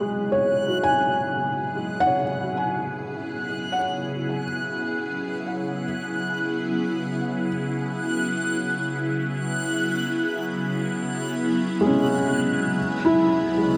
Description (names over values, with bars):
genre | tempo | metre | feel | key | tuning
ambient | free time | none | none | E major | A4 = 439 Hz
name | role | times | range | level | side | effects
evolving wavetable pad | sustained chords | 0.0-13.8 s | D2 to G#4 | -28 LUFS | equal | ensemble chorus, built-in reverb, phaser
felt-muted upright piano | arpeggios | 0.0-13.8 s | G#3 to G#5 | -26 LUFS | equal | tape echo
backwards swelling texture | texture | 0.0-13.8 s | F#6 | -33 LUFS | equal | built-in reverb
room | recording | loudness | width
wet lush hall reverb, RT60 2.7 s | none | -25 LUFS | mono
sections
0.0-13.8 A section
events
fade-in on ambient pad 0.0-13.8; fade-out on synth texture 0.0-13.8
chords
0.0 E69; 12.8 Bmadd9/D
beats
free time